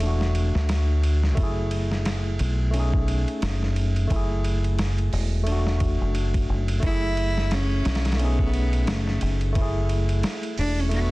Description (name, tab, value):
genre	trip hop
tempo	88 BPM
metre	4/4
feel	swing 58% on 16ths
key	F# minor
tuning	A4 = 439 Hz
part	barky tine electric piano	accompaniment	0.0-11.1 s	A3 to G#4	-30 LUFS	left 1 dB	overdrive, harmonic tremolo, vintage 12-bit sampler grit, tape echo
part	deep dub fingered electric bass	bass	0.0-11.1 s	E1 to D2	-23 LUFS	equal	tube saturation
part	dusty soul sampler-style drum kit	drums	0.0-11.1 s	hi-hat, kick drum, ride cymbal, snare drum	-29 LUFS	equal	vintage 12-bit sampler grit
part	warm cello	melody	6.9-11.1 s	A3 to E4	-29 LUFS	right 1 dB	tape echo
room	digital ambience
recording	dense, heavily limited modern master, vinyl crackle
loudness	-21 LUFS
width	side -20 dB against mid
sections	0.0-11.1 A section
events	none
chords	0.0 E9sus4; 1.4 F#m9; 2.7 B13; 4.1 F#m9; 5.5 E9sus4; 6.8 F#m9; 8.2 B13; 9.6 F#m9